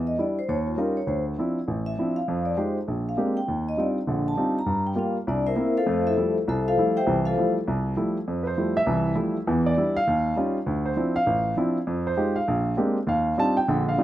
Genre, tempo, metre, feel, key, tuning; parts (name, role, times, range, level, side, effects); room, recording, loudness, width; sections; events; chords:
jazz; 200 BPM; 4/4; swing 63% on 8ths; F major; A4 = 439 Hz
vibraphone with medium hard mallets; melody; 0.0-7.5 s; D4 to Bb5; -26 LUFS; left 2 dB
warm baby grand piano; accompaniment; 0.0-14.0 s; A1 to A5; -23 LUFS; right 1 dB
light reverb, small room ambience; rough home demo mix; -22 LUFS; side -13 dB against mid
0.0-8.3 A section; 8.3-14.0 B section
0.5 Eb9; 1.1 Dm9; 2.3 Fm9; 2.9 Bb13; 3.5 Ebmaj13; 4.7 Gm7; 5.3 C7; 5.9 Fmaj9; 9.5 Em7; 10.1 Eb9; 10.7 Dm9; 11.9 Fm9; 12.5 Bb13; 13.1 Ebmaj13